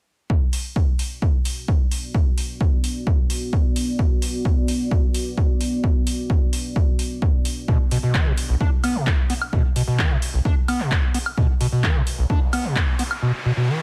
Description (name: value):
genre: acid house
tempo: 130 BPM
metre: 4/4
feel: straight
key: B minor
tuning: A4 = 440 Hz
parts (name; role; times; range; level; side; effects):
- dark analog pad; sustained chords; 1.6-13.2 s; B3 to D5; -32 LUFS; equal; chorus, vintage 12-bit sampler grit, sidechain pumping
- electronic kick drum; drums; 0.3-12.9 s; none; -22 LUFS; equal; none
- booming analog drum machine; drums; 0.5-13.2 s; handclaps, hi-hat, woodblock; -30 LUFS; equal; none
- overdriven acid bass; riff; 7.7-13.8 s; B1 to D4; -25 LUFS; equal; distortion, tube saturation, subtle chorus, sidechain pumping
- riser; sound effects; 12.0-13.8 s; none; -35 LUFS; equal; none
room: little or no reverb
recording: none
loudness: -21 LUFS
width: mono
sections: 0.3-13.8 A section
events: riser 12.0-13.8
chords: 0.3 Bm